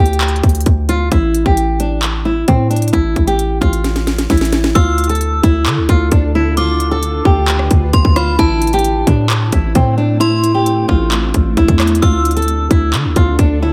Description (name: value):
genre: hip hop, trap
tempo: 132 BPM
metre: 4/4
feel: half-time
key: D dorian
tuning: A4 = 441 Hz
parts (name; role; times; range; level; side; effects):
- flamenco guitar; melody; 0.0-13.7 s; C4 to A4; -19 LUFS; equal; none
- hard-hitting 808-style bass; bass; 0.0-13.7 s; A1 to D3; -18 LUFS; equal; none
- trap drum kit; drums; 0.1-13.5 s; handclaps, hi-hat, kick drum, rim click, snare drum; -17 LUFS; equal; none
- metallic FM bell; second line; 4.8-12.9 s; A5 to E6; -24 LUFS; equal; chorus, tape echo
- granular cloud pad; sustained chords; 5.5-13.7 s; D3 to B4; -26 LUFS; equal; built-in reverb
room: little or no reverb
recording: none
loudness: -14 LUFS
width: mono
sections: 0.0-4.8 A section; 4.8-13.7 B section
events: drum fill 3.8-4.8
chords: 0.0 Dsus4; 1.1 A5; 4.8 Dm; 8.4 Am; 12.0 Dm